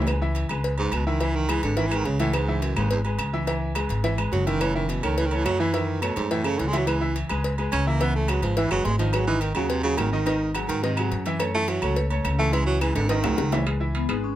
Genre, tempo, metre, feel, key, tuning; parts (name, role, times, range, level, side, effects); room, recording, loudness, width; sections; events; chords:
Afro-Cuban jazz; 212 BPM; 4/4; straight; C# minor; A4 = 440 Hz
clear baby grand piano; accompaniment; 0.0-14.3 s; D#3 to E5; -28 LUFS; left 1 dB
upright bass; bass; 0.0-14.4 s; F#1 to G#2; -26 LUFS; equal
timbales and agogo bells; percussion; 0.0-14.2 s; -32 LUFS; right 5 dB
claves; percussion; 0.1-14.2 s; -35 LUFS; left 5 dB
cowbell and bongos; percussion; 0.1-13.7 s; -32 LUFS; left 1 dB
clear baritone saxophone; second line; 0.8-13.6 s; D#2 to C#4; -26 LUFS; right 3 dB
vibraphone with medium hard mallets; melody; 14.0-14.3 s; B3 to D#4; -27 LUFS; left 9 dB
little or no reverb; close, detailed microphones; -22 LUFS; side -12 dB against mid
0.1-13.7 A section
baritone saxophone solo 0.1-13.7; drum fill 13.0-13.7
0.1 C#m7; 4.6 F#m7; 6.9 C#m9; 9.1 G#7(no3); 11.4 F#m7; 12.5 C#m7; 13.1 G#7; 13.7 C#m9